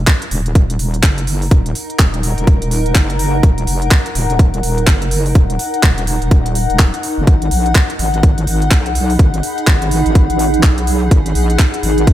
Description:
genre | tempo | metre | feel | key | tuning
bass house | 125 BPM | 4/4 | swing 61% on 16ths | Eb minor | A4 = 440 Hz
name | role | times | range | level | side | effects
wobble bass | bass | 0.0-12.1 s | Eb1 to Cb2 | -17 LUFS | equal | chorus, sidechain pumping
granular cloud pad | texture | 0.8-12.1 s | Eb4 to Cb6 | -20 LUFS | left 1 dB | built-in reverb, sidechain pumping
electronic kick drum | drums | 0.1-12.1 s | none | -11 LUFS | equal | none
garage drum kit | drums | 0.1-12.1 s | handclaps, hi-hat | -20 LUFS | right 1 dB | none
room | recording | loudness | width
little or no reverb | none | -11 LUFS | side -13 dB against mid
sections
0.0-12.1 A section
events
none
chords
0.0 Ebm; 7.3 Abm7

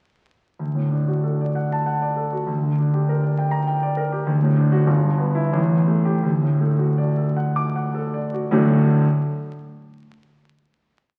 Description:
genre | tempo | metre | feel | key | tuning
classical, romantic character piece for solo piano | 76-102 BPM | 3/4 | rubato | D major | A4 = 441 Hz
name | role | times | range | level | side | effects
warm grand piano | solo | 0.6-9.1 s | G1 to D6 | -21 LUFS | equal | none
room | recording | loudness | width
wet recital hall reverb, RT60 1.6 s | very old 78 rpm record, vinyl crackle | -21 LUFS | mono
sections
0.6-8.5 A section; 8.5-10.7 final chord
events
slowing down 3.4-8.5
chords
0.6 D; 2.5 Gm/D; 4.3 D; 4.9 Em/G; 5.6 A5; 6.3 D

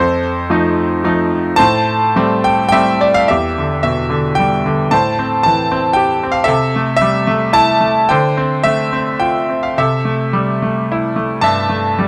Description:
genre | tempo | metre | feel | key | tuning
classical, lyrical solo piano | 100-117 BPM | 3/4 | rubato | A minor, C major from 3.3 s | A4 = 440 Hz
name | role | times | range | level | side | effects
bright concert grand piano | solo | 0.0-12.1 s | E2 to A5 | -15 LUFS | equal | none
room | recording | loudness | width
light reverb | close, detailed microphones | -15 LUFS | mono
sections
0.0-3.3 A section; 3.3-12.1 B section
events
grand piano fill 2.1-3.3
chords
0.0 F7; 1.6 Am7; 3.3 Em7; 4.9 Am7; 6.5 C6; 8.1 G9sus4/D; 9.8 C6

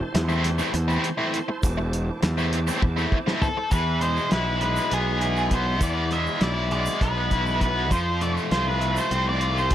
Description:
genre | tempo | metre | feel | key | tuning
psychedelic rock | 201 BPM (eighths) | 7/8 | straight | E phrygian dominant | A4 = 436 Hz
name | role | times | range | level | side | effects
bright tonewheel organ | sustained chords | 0.0-3.7 s | E4 to D6 | -33 LUFS | right 4 dB | chorus vibrato, slow rotary speaker
overdriven electric guitar | riff | 0.1-9.7 s | E3 to F4 | -26 LUFS | left 1 dB | harmonic tremolo
fuzz fingered electric bass | bass | 0.1-9.7 s | E1 to F2 | -26 LUFS | equal | overdrive
cloth-damped thuddy drum kit | drums | 0.1-9.7 s | hi-hat, kick drum, snare drum, toms | -25 LUFS | equal | none
egg shaker | percussion | 0.3-9.6 s | none | -44 LUFS | right 6 dB | none
octave-fuzz lead guitar | melody | 3.4-9.7 s | G#4 to E5 | -26 LUFS | equal | distortion, slapback echo
room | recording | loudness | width
light reverb, small room ambience | none | -21 LUFS | side -11 dB against mid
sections
0.0-3.7 A section; 3.7-9.7 B section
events
drum fill 2.8-3.7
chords
0.0 Am/E; 3.7 E; 7.9 F

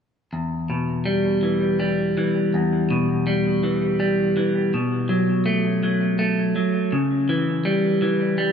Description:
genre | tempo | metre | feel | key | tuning
rock | 55 BPM (dotted quarters) | 6/8 | straight | E dorian | A4 = 440 Hz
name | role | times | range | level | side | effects
semi-hollow electric guitar | arpeggios | 0.3-8.5 s | E2 to A3 | -19 LUFS | equal | analog delay
room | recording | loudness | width
moderate concert hall reverb, RT60 2.1 s | none | -19 LUFS | side -7 dB against mid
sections
0.3-8.5 A section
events
none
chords
0.3 Em; 4.7 B5; 6.9 C#dim

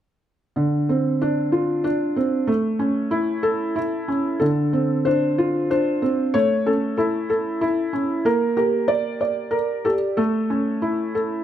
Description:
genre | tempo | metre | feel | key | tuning
children's music | 94 BPM | 3/4 | straight | D harmonic minor | A4 = 441 Hz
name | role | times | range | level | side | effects
felt-muted upright piano | melody | 0.6-11.4 s | D3 to D5 | -19 LUFS | equal | none
room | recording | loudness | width
moderate recital hall reverb, RT60 1.8 s | close, detailed microphones | -19 LUFS | side -10 dB against mid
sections
0.6-4.4 A section; 4.4-11.4 B section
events
none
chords
0.6 Dm7; 2.5 A; 4.4 Dm7; 6.3 A; 8.3 Gm/Bb; 10.2 A

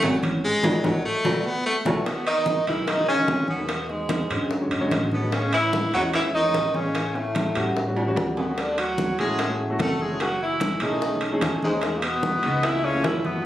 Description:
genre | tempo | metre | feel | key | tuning
Afro-Cuban jazz | 148 BPM | 4/4 | straight | E major | A4 = 441 Hz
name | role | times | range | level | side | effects
bright baritone saxophone | second line | 0.0-13.4 s | G#2 to B3 | -28 LUFS | equal | none
warm grand piano | accompaniment | 0.0-13.5 s | D3 to G#4 | -27 LUFS | equal | none
upright bass | bass | 0.0-13.4 s | F#1 to A2 | -32 LUFS | equal | none
bongos | percussion | 0.0-13.2 s | none | -31 LUFS | left 3 dB | none
congas | percussion | 0.0-13.4 s | none | -31 LUFS | equal | none
timbales | percussion | 0.0-13.2 s | none | -30 LUFS | right 2 dB | none
warm tenor saxophone | melody | 1.9-13.4 s | G#3 to A4 | -25 LUFS | equal | none
room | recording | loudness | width
moderate studio reverb, RT60 0.6 s | recorded on a phone in the room, studio reverb, compression | -21 LUFS | side -13 dB against mid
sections
0.0-2.1 A section; 2.1-13.5 B section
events
baritone saxophone solo 0.0-2.1; band accent 0.4-2.1; drum fill 1.5-2.1, 8.0-8.6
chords
0.4 G#5; 1.3 B5; 2.1 Emaj7; 3.7 E13; 5.3 Amaj9; 7.0 A13; 8.6 Dmaj7; 10.2 F#m7; 11.0 B13; 11.8 Emaj7; 12.6 C#7alt

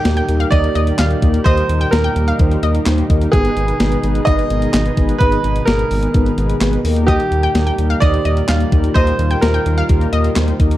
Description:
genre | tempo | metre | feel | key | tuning
synth-pop | 128 BPM | 4/4 | straight | Eb major | A4 = 435 Hz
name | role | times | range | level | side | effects
clear baby grand piano | melody | 0.0-10.3 s | G4 to Eb5 | -20 LUFS | right 2 dB | tape echo
mellow synth brass | accompaniment | 0.0-10.8 s | Bb3 to C5 | -21 LUFS | left 2 dB | chorus
warm analog pad | sustained chords | 0.0-10.8 s | Bb2 to Ab4 | -24 LUFS | right 1 dB | wide subtle chorus
round analog bass | bass | 0.1-10.8 s | Ab1 to Eb2 | -17 LUFS | equal | none
clean 12-bit digital drum machine | drums | 0.1-10.8 s | handclaps, hi-hat, kick drum, snare drum | -17 LUFS | equal | none
analog pluck | second line | 0.2-3.0, 7.1-10.5 s | Eb5 to G5 | -24 LUFS | left 2 dB | chorus, tape echo
room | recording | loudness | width
light reverb | dark, warm production | -13 LUFS | side -14 dB against mid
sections
0.0-10.8 A section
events
none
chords
0.0 Eb; 3.3 Abm; 6.8 Eb

